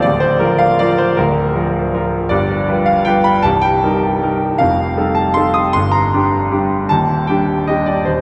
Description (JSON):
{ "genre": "classical, piano waltz", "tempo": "157 BPM", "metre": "3/4", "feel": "uneven beats, rubato", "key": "Bb major", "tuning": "A4 = 437 Hz", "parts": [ { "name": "clear grand piano", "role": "solo", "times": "0.0-8.2 s", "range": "C1 to Eb6", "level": "-15 LUFS", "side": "equal", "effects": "none" } ], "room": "wet cathedral reverb, RT60 5.1 s", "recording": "in a vast, echoing space", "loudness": "-15 LUFS", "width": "mono", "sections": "0.0-8.2 A section", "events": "none", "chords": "0.0 Bb/D; 2.3 G7; 3.5 Cm7; 4.6 F9; 5.8 Gm; 6.9 Ebmaj7", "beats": "| 0.04 0.41 0.80 | 1.19 1.56 1.93 | 2.30 2.68 3.08 | 3.45 3.83 4.23 | 4.60 4.97 5.37 | 5.75 6.13 6.52 | 6.91 7.29 7.69 | 8.07" }